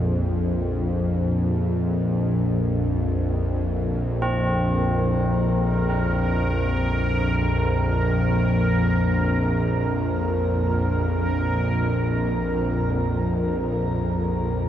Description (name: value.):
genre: dark ambient drone.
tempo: free time.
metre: none.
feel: none.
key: unclear.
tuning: A4 = 441 Hz.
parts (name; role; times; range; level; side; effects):
bowed-like drone; drone; 0.0-14.7 s; Bb1 to F2; -21 LUFS; equal; built-in reverb.
bubbling stepped-filter texture; texture; 1.8-14.7 s; Bb4; -29 LUFS; right 1 dB; chorus, built-in reverb, shimmer reverb.
tubular bells; arpeggios; 4.2-14.7 s; C4; -31 LUFS; right 2 dB; tape echo, shimmer reverb.
room: wet echo chamber reverb, RT60 2.6 s.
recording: echo-heavy mix.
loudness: -20 LUFS.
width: side -11 dB against mid.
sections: 0.0-14.7 A section.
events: none.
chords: 0.0 Bb5.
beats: free time.